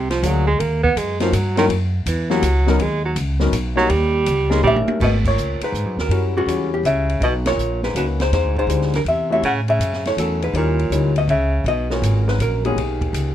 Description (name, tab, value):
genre	jazz, small-group swing and bop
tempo	162 BPM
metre	3/4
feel	swing 66% on 8ths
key	G# minor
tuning	A4 = 438 Hz
part	mellow baritone saxophone	second line	0.0-13.3 s	C#2 to B3	-23 LUFS	right 3 dB	none
part	upright bass	bass	0.0-13.3 s	G#1 to A2	-20 LUFS	equal	none
part	open jazz drum kit	drums	0.1-13.3 s	crash cymbal, hi-hat, kick drum, ride cymbal, snare drum, toms	-28 LUFS	right 1 dB	none
part	warm grand piano	accompaniment	0.2-12.8 s	F#3 to C#5	-24 LUFS	left 5 dB	none
part	hollow-body jazz guitar	melody	4.7-13.3 s	F#4 to F#5	-22 LUFS	left 2 dB	none
room	light reverb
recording	dark, warm production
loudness	-16 LUFS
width	side -11 dB against mid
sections	0.0-5.0 A section; 5.0-13.3 B section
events	baritone saxophone solo 0.0-5.0; drum fill 4.6-5.0; band accent 5.2, 7.4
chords	0.0 A#7b13; 0.6 D#m7; 1.7 F#7; 2.8 Bmaj9; 3.9 D#7; 5.0 G#m11; 6.1 F#7b9; 7.2 Bmaj9; 8.3 E7alt; 9.4 A6; 10.5 D#7b9; 11.7 G#m11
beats	0.23 | 0.60 0.96 1.33 | 1.70 2.06 2.43 | 2.80 3.16 3.53 | 3.90 4.27 4.63 | 5.00 5.37 5.74 | 6.11 6.48 6.85 | 7.22 7.59 7.96 | 8.33 8.70 9.07 | 9.44 9.81 10.18 | 10.55 10.92 11.29 | 11.66 12.03 12.40 | 12.77 13.14